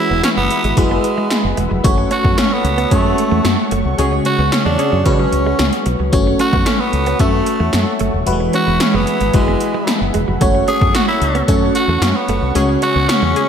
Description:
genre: 1980s-style pop.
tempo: 112 BPM.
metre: 4/4.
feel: straight.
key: F# minor.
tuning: A4 = 440 Hz.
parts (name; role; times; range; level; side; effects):
raspy tenor saxophone; melody; 0.0-13.5 s; G#3 to G#4; -19 LUFS; right 1 dB; ping-pong delay.
FM electric piano; accompaniment; 0.0-13.5 s; C#3 to E5; -19 LUFS; left 1 dB; chorus, phaser.
warm analog pad; sustained chords; 0.0-13.5 s; G#4 to C#6; -26 LUFS; equal; chorus.
direct-recorded clean electric guitar; riff; 0.0-13.4 s; F#3 to C#4; -24 LUFS; right 5 dB; analog chorus.
woody fretless electric bass; bass; 0.1-13.3 s; D#1 to C#3; -19 LUFS; equal; none.
80s electronic pad drums; drums; 0.2-13.5 s; hi-hat, kick drum, snare drum; -18 LUFS; equal; overdrive, gated reverb.
funky polysynth comp; stabs; 4.0-5.0, 12.6-13.5 s; C#4 to G#4; -25 LUFS; left 2 dB; chorus, ping-pong delay.
room: moderate lush hall reverb, RT60 2.1 s.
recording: bright 1980s-style digital production.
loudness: -13 LUFS.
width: side -8 dB against mid.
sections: 0.0-13.5 A section.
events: band accent 4.0-6.1, 12.6-13.5.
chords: 0.0 Eadd9; 1.8 F#m; 4.0 C#sus4; 6.1 F#m; 8.3 Eadd9; 10.4 F#m; 12.6 C#sus4.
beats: 0.23 0.77 1.31 | 1.84 2.38 2.91 3.45 | 3.98 4.52 5.06 5.59 | 6.13 6.66 7.20 7.74 | 8.27 8.81 9.34 9.88 | 10.41 10.95 11.48 12.02 | 12.56 13.09.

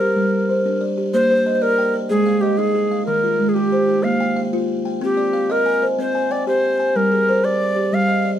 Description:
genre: southern african traditional.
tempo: 124 BPM (dotted quarters).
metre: 12/8.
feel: straight.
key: Bb mixolydian.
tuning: A4 = 440 Hz.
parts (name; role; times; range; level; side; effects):
Native American-style cedar flute; melody; 0.0-8.3 s; G4 to F5; -19 LUFS; equal; none.
buzzing kalimba; arpeggios; 0.0-8.4 s; Eb3 to Ab5; -19 LUFS; equal; none.
room: moderate studio reverb, RT60 0.7 s.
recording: dark, warm production.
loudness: -16 LUFS.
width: side -10 dB against mid.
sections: 0.0-1.1 A section; 1.1-8.4 B section.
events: none.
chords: 0.0 Gm; 1.1 Bb; 2.1 Ab5; 3.1 Eb; 4.0 Bb5; 5.0 Cm; 7.0 Gm.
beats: 0.17 0.65 | 1.14 1.62 2.11 2.59 | 3.08 3.56 4.05 4.53 | 5.02 5.50 5.99 6.47 | 6.96 7.44 7.93.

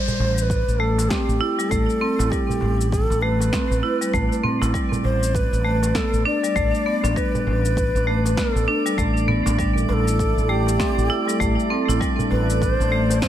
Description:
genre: organic downtempo.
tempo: 99 BPM.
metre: 4/4.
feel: swing 59% on 16ths.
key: A minor.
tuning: A4 = 441 Hz.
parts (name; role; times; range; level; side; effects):
breathy bright low Native American-style wooden flute; melody; 0.0-13.3 s; G4 to D5; -26 LUFS; equal; digital delay.
marimba with hard mallets; arpeggios; 0.0-13.3 s; G3 to E4; -24 LUFS; equal; digital delay.
drifting glass-harmonics texture; texture; 0.5-13.3 s; D5; -31 LUFS; right 4 dB; chorus, built-in reverb.
electronic shaker and snare drum; drums; 0.1-13.3 s; none; -30 LUFS; left 1 dB; overdrive, studio reverb.
darbuka; percussion; 0.1-13.2 s; none; -31 LUFS; right 2 dB; none.
mellow fretless electric bass; bass; 0.2-13.2 s; A1; -22 LUFS; equal; sidechain pumping.
electronic kick drum; drums; 0.5-13.3 s; none; -26 LUFS; equal; overdrive, studio reverb.
warm analog pad; sustained chords; 9.6-13.3 s; A3 to A4; -29 LUFS; equal; chorus, sidechain pumping.
room: light reverb.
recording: none.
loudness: -18 LUFS.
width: side -11 dB against mid.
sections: 0.0-13.3 A section.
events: none.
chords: 0.0 Am7; 4.7 Gadd9/A; 9.6 Am7.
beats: 0.50 1.10 1.71 | 2.32 2.92 3.53 4.13 | 4.74 5.35 5.95 6.56 | 7.16 7.77 8.38 8.98 | 9.59 10.20 10.80 11.41 | 12.01 12.62 13.22.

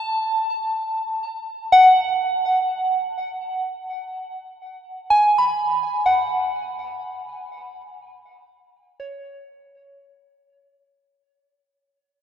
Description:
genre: ambient.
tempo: 62 BPM.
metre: 3/4.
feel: straight.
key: unclear.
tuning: A4 = 441 Hz.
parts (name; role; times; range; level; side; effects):
soft synth bell; solo; 0.0-11.0 s; C#5 to B5; -19 LUFS; equal; chorus, phaser, tape echo.
room: wet cathedral reverb, RT60 4.7 s.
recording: dark, warm production.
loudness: -18 LUFS.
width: side -10 dB against mid.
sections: 0.0-11.0 A section.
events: fade-out 3.2-11.0.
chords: 0.0 A.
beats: 0.26 1.24 | 2.21 3.18 4.14 | 5.10 6.07 7.04 | 8.02 9.00 10.00.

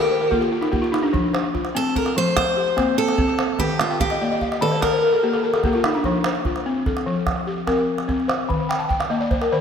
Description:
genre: west african traditional, West African string and xylophone music.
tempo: 98 BPM (dotted quarters).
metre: 12/8.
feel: straight.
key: F mixolydian.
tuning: A4 = 440 Hz.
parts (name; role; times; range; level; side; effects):
picked steel-string acoustic guitar; melody; 0.0-5.4 s; F4 to C5; -24 LUFS; right 1 dB; ping-pong delay.
balafon; arpeggios; 0.0-9.6 s; Eb3 to A5; -20 LUFS; left 2 dB; ping-pong delay.
calabash; percussion; 0.3-9.5 s; none; -26 LUFS; right 3 dB; none.
room: wet lush hall reverb, RT60 3.1 s.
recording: dreamy mix soaked in reverb.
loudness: -18 LUFS.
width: side -7 dB against mid.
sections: 0.0-9.6 A section.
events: balafon fill 0.0-1.1, 3.9-6.0, 8.7-9.6.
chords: 0.0 Eb; 1.1 F; 3.6 Eb; 6.0 F; 8.5 Eb5.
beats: 0.52 | 1.14 1.75 2.36 2.98 | 3.59 4.20 4.82 5.43 | 6.04 6.66 7.27 7.88 | 8.49 9.11.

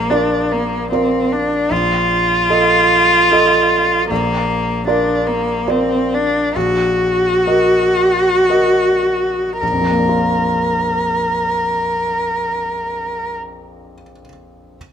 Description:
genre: classical, romantic duo for cello and grand piano.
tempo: 50-79 BPM.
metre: 3/4.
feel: rubato.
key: Bb major.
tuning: A4 = 441 Hz.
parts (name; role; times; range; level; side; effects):
rich cello; melody; 0.0-13.3 s; Bb3 to Bb4; -15 LUFS; equal; none.
clear grand piano; accompaniment; 0.0-14.8 s; Bb1 to Eb5; -20 LUFS; right 1 dB; none.
room: moderate large studio reverb, RT60 1.3 s.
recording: minimal, uncompressed stereo recording.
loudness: -13 LUFS.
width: side -8 dB against mid.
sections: 0.0-9.6 A section; 9.6-12.6 B section.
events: slowing down 2.9-9.6.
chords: 0.0 Bb; 1.7 F7/Bb; 4.1 Bb; 6.5 Ebm/Bb; 9.6 Bb.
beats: 0.09 0.91 | 1.71 2.49 3.31 | 4.11 4.88 5.68 | 6.55 7.46 8.49 | 9.62 10.61 11.61.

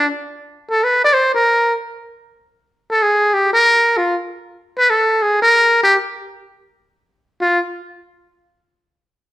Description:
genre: jazz.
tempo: free time.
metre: none.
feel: none.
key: Bb major.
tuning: A4 = 440 Hz.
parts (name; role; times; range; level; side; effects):
trumpet with metal mute; solo; 0.0-7.6 s; F4 to D5; -13 LUFS; equal; none.
room: wet large studio reverb, RT60 1.3 s.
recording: none.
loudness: -13 LUFS.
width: side -15 dB against mid.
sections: 0.0-2.4 A section; 2.4-7.4 B section; 7.4-8.7 C section.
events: none.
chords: none.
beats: free time.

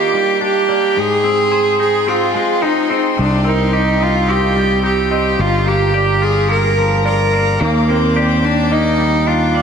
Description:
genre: rock.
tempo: 108 BPM.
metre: 4/4.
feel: straight.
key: C minor.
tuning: A4 = 440 Hz.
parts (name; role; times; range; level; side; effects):
clear cello; melody; 0.0-9.6 s; Bb3 to Bb4; -15 LUFS; right 1 dB; diffuse ambient delay.
rich chamber string section; sustained chords; 0.0-9.6 s; G4 to D6; -26 LUFS; left 2 dB; none.
electric guitar through a small old amp; arpeggios; 0.0-9.6 s; Ab4 to F5; -25 LUFS; right 4 dB; lush chorus, diffuse ambient delay.
twangy electric guitar; arpeggios; 0.0-9.6 s; G2 to Ab4; -21 LUFS; left 4 dB; lush chorus, diffuse ambient delay.
growling fingered electric bass; bass; 3.2-9.6 s; G1 to Eb2; -16 LUFS; equal; overdrive.
room: wet plate reverb, RT60 3.4 s.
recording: dreamy mix soaked in reverb.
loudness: -12 LUFS.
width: side -6 dB against mid.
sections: 0.0-9.6 A section.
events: none.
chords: 0.0 Ebmaj7; 1.0 Ab; 3.2 Cm; 5.4 Gm7; 7.6 Ebmaj7.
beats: 0.41 | 0.96 1.52 2.07 2.62 | 3.18 3.73 4.28 4.84 | 5.39 5.95 6.50 7.05 | 7.61 8.16 8.72 9.27.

